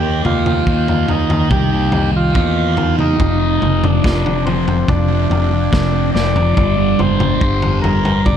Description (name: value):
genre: psychedelic rock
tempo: 71 BPM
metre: 4/4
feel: straight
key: unclear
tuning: A4 = 440 Hz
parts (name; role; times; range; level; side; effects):
- combo organ; melody; 0.0-8.4 s; C4 to D5; -20 LUFS; equal; analog delay
- thick fuzz guitar; riff; 0.0-8.4 s; F2 to Eb4; -18 LUFS; equal; distortion, phaser, analog delay
- fingered electric bass; bass; 0.0-8.4 s; F1 to E2; -18 LUFS; equal; none
- crunchy breakbeat drum kit; drums; 0.2-8.4 s; kick drum, snare drum, toms; -19 LUFS; equal; none
room: little or no reverb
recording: echo-heavy mix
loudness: -13 LUFS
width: side -9 dB against mid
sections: 0.0-8.4 A section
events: drum fill 6.1-6.6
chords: 0.0 Ebadd9; 3.2 F5; 6.6 G5